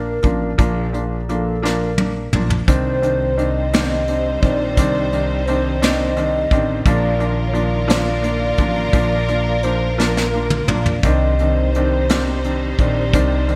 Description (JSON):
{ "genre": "six-eight pop ballad", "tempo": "57 BPM (dotted quarters)", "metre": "6/8", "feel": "straight", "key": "Bb major", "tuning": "A4 = 439 Hz", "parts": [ { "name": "mellow hollow alto flute", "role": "second line", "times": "0.0-13.6 s", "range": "A4 to Eb5", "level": "-25 LUFS", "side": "equal", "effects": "none" }, { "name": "felt-muted upright piano", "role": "accompaniment", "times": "0.0-13.6 s", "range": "Eb3 to D4", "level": "-24 LUFS", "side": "equal", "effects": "none" }, { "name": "upright bass", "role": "bass", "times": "0.0-13.6 s", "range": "A1 to C2", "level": "-24 LUFS", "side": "equal", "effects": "none" }, { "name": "vintage brush drum kit", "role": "drums", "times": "0.2-13.6 s", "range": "hi-hat, kick drum, snare drum, toms", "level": "-21 LUFS", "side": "equal", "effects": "gated reverb" }, { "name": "warm studio string section", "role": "sustained chords", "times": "2.7-13.6 s", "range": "Eb3 to C5", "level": "-28 LUFS", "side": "equal", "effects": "none" } ], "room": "moderate lush hall reverb, RT60 2.1 s", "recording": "bright 1980s-style digital production", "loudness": "-18 LUFS", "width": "mono", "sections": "0.0-13.6 A section", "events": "drum fill 1.6-2.7, 10.0-11.0", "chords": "0.0 Bb; 2.7 Cmadd9; 6.9 Bb; 11.0 Cmadd9", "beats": "| 0.59 1.63 | 2.68 3.73 | 4.78 5.82 | 6.86 7.89 | 8.94 9.98 | 11.04 12.09 | 13.14" }